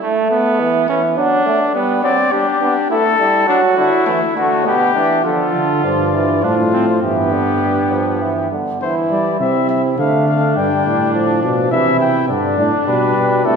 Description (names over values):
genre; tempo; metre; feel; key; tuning
classical, imitative canzona for brass ensemble; 103 BPM; 3/4; straight; G major; A4 = 440 Hz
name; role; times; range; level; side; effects
mellow trumpet; second line; 0.0-13.6 s; A3 to F#4; -19 LUFS; right 2 dB; none
clear euphonium; accompaniment; 0.0-13.6 s; B2 to D4; -18 LUFS; right 2 dB; none
mellow trumpet; melody; 2.0-13.6 s; D4 to G5; -18 LUFS; left 6 dB; none
dark bass trombone; bass; 5.2-13.6 s; G2 to G3; -18 LUFS; right 1 dB; none
room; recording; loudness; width
wet concert hall reverb, RT60 2.4 s; heard from further back in the room; -13 LUFS; side -6 dB against mid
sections
0.0-5.2 A section; 5.2-8.8 B section; 8.8-13.6 C section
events
none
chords
0.0 A5; 1.2 D/F#; 1.7 G; 2.9 A5; 3.5 D; 4.7 G/B; 5.2 Dm; 7.0 G; 8.8 C/E; 10.0 Dm; 10.6 G; 11.7 C; 12.3 G